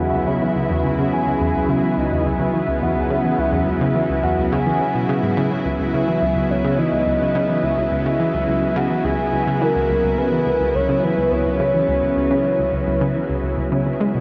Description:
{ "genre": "ambient, sequencer-driven space music", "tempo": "106 BPM", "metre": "4/4", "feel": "straight", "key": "C# minor", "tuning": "A4 = 439 Hz", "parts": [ { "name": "soft octave-layered synth lead", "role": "melody", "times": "0.0-14.1 s", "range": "A#4 to G#5", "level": "-24 LUFS", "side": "equal", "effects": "chorus, phaser, tape echo" }, { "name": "lush unison pad", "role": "sustained chords", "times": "0.0-14.2 s", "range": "C#3 to G#4", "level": "-24 LUFS", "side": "equal", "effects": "chorus" }, { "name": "analog pluck", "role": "riff", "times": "0.0-14.2 s", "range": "C#2 to G#3", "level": "-25 LUFS", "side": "equal", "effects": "chorus, tape echo" }, { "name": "wind-like tuned noise texture", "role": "texture", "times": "0.0-14.2 s", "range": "E4", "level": "-35 LUFS", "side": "equal", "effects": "none" } ], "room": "wet huge ambient reverb, RT60 7.9 s", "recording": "worn, warbling old tape, cassette tape, warbly pitch drift, nothing above 10.9 kHz", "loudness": "-19 LUFS", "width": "mono", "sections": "0.0-14.2 A section", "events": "none", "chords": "0.0 C#m" }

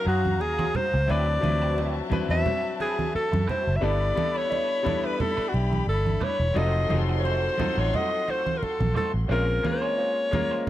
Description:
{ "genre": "lush 1970s-style soul", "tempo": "88 BPM", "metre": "4/4", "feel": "swing 54% on 16ths", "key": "unclear", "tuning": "A4 = 444 Hz", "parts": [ { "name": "clear alto saxophone", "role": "melody", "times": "0.0-10.7 s", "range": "Gb4 to E5", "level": "-27 LUFS", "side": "equal", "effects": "none" }, { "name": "dark studio string section", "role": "second line", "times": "0.0-10.7 s", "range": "Db4 to C6", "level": "-34 LUFS", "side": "left 6 dB", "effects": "none" }, { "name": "bright grand piano", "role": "accompaniment", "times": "0.0-10.7 s", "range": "F3 to F5", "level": "-32 LUFS", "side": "left 4 dB", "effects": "none" }, { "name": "electric guitar through a small old amp", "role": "riff", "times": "0.1-10.7 s", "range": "Gb3 to C5", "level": "-37 LUFS", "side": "right 7 dB", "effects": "wah, spring reverb" }, { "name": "vintage muted fingered electric bass", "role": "bass", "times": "0.1-9.6 s", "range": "E1 to Gb2", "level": "-25 LUFS", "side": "equal", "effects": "none" }, { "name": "congas", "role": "percussion", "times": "0.3-10.7 s", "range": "none", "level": "-31 LUFS", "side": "right 3 dB", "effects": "none" } ], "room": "small room ambience", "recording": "dry, close 1970s-style studio recording", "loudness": "-22 LUFS", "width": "side -13 dB against mid", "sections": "0.0-10.7 A section", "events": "none", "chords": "0.0 Ebm11; 1.1 D13; 3.8 G69; 6.6 F7b9; 9.3 Bbm9" }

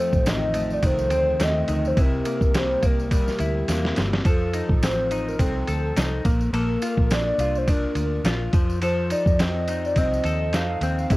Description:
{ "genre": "indie pop, bedroom pop", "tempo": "105 BPM", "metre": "4/4", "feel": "swing 55% on 16ths", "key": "unclear", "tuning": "A4 = 440 Hz", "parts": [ { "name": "warbly nostalgic lead", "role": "melody", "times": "0.0-11.2 s", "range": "G4 to F5", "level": "-26 LUFS", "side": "equal", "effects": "analog chorus, analog delay" }, { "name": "semi-hollow electric guitar", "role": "accompaniment", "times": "0.0-11.2 s", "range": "F2 to A4", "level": "-27 LUFS", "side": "left 2 dB", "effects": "analog chorus, warbly pitch drift" }, { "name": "vintage muted fingered electric bass", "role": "bass", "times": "0.1-11.2 s", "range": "G1 to F2", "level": "-26 LUFS", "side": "equal", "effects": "none" }, { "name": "lo-fi sampler-style drum kit", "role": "drums", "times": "0.1-11.2 s", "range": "kick drum, ride cymbal, snare drum", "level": "-24 LUFS", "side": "equal", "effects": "none" }, { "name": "tambourine", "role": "percussion", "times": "0.1-11.2 s", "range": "none", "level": "-42 LUFS", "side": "right 4 dB", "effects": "none" } ], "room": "light reverb", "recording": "home recording on cassette", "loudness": "-20 LUFS", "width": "side -19 dB against mid", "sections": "0.0-11.2 A section", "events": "drum fill 3.7-4.3", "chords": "0.0 F7; 2.0 C7; 4.3 F7; 6.2 Bbmaj7; 8.5 F7" }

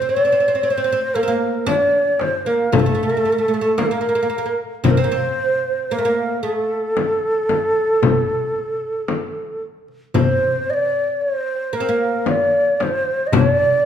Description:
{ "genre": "Turkish makam ensemble", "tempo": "113 BPM (eighths)", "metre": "10/8", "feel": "straight", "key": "unclear", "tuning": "A4 = 441 Hz", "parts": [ { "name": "breathy mellow ney", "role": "melody", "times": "0.0-13.9 s", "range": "A4-21c to Eb5", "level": "-18 LUFS", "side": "equal", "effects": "none" }, { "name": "oud", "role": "second line", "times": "0.0-13.9 s", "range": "A3 to D4-40c", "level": "-24 LUFS", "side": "right 4 dB", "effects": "none" }, { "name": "darbuka", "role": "percussion", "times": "1.1-13.6 s", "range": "none", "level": "-23 LUFS", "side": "left 1 dB", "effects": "none" }, { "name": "frame drum", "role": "percussion", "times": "1.7-13.6 s", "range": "none", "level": "-22 LUFS", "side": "left 6 dB", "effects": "none" } ], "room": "moderate recital hall reverb, RT60 1.5 s", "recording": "recorded in a church or concert hall", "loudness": "-16 LUFS", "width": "side -9 dB against mid", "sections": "0.0-13.9 A section", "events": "none", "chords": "none" }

